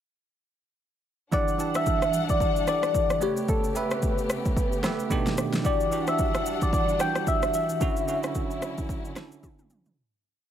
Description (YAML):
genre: amapiano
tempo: 111 BPM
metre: 4/4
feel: swing 58% on 16ths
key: E dorian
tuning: A4 = 438 Hz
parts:
  - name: soft struck synth lead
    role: melody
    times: 1.3-9.4 s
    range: G4 to G5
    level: -27 LUFS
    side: left 2 dB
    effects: chorus, phaser, tape echo
  - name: bell-like tine electric piano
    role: accompaniment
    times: 1.3-10.0 s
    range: B2 to A5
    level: -30 LUFS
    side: right 5 dB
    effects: none
  - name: dark symphonic string section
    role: sustained chords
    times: 1.3-10.0 s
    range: C#3 to F#5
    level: -35 LUFS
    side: left 2 dB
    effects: sidechain pumping
  - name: deep house drum kit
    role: drums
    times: 1.3-10.0 s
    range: kick drum, rim click, shaker, snare drum, toms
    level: -28 LUFS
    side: equal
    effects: overdrive
room: light reverb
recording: none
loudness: -23 LUFS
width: side -10 dB against mid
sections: 1.3-10.0 groove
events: fade-out 7.8-10.0; drum fill 9.4-10.0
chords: 1.3 Em9; 3.2 A9; 5.1 B7alt; 5.6 Em9; 7.8 Dmaj9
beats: | 1.32 1.86 2.40 2.95 | 3.49 4.03 4.57 5.11 | 5.65 6.19 6.73 7.27 | 7.81 8.35 8.89 9.43